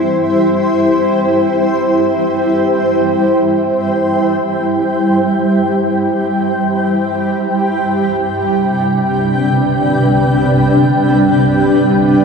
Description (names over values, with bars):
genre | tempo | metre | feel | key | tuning
ambient | free time | none | none | C major | A4 = 439 Hz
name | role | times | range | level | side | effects
granular cloud pad | solo | 0.0-12.2 s | C3 to G5 | -11 LUFS | equal | built-in reverb, ping-pong delay
room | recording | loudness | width
wet huge ambient reverb, RT60 8.7 s | none | -11 LUFS | side -5 dB against mid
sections
0.0-12.2 A section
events
none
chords
0.0 C; 7.5 G/C